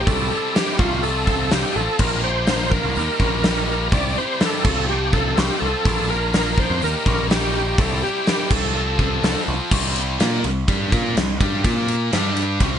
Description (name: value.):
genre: classic rock.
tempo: 124 BPM.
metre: 4/4.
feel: straight.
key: unclear.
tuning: A4 = 440 Hz.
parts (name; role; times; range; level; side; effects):
overdriven tonewheel organ; melody; 0.0-9.4 s; F4 to D5; -24 LUFS; equal; slow rotary speaker, chorus vibrato.
tight distorted guitar; riff; 0.0-12.8 s; Bb2 to Bb4; -24 LUFS; left 1 dB; distortion.
growling picked electric bass; bass; 0.0-12.8 s; A1 to Bb2; -24 LUFS; equal; overdrive.
gated 80s drum kit; drums; 0.1-12.7 s; crash cymbal, hi-hat, kick drum, ride cymbal, snare drum; -21 LUFS; equal; none.
room: little or no reverb.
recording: nothing above 10.3 kHz.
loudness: -17 LUFS.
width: side -9 dB against mid.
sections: 0.0-9.7 A section; 9.7-12.8 B section.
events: none.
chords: 0.1 C; 0.8 F/C; 2.0 Bb; 3.0 Eb; 3.9 C; 4.6 F/C; 5.9 Bb; 6.8 Eb; 7.8 C; 8.5 F/C; 9.7 C5; 11.6 Bb5; 12.1 G5.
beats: | 0.07 0.55 1.03 1.51 | 2.00 2.48 2.96 3.44 | 3.92 4.41 4.89 5.37 | 5.86 6.34 6.82 7.30 | 7.79 8.27 8.75 9.23 | 9.71 10.20 10.68 11.16 | 11.64 12.12 12.61.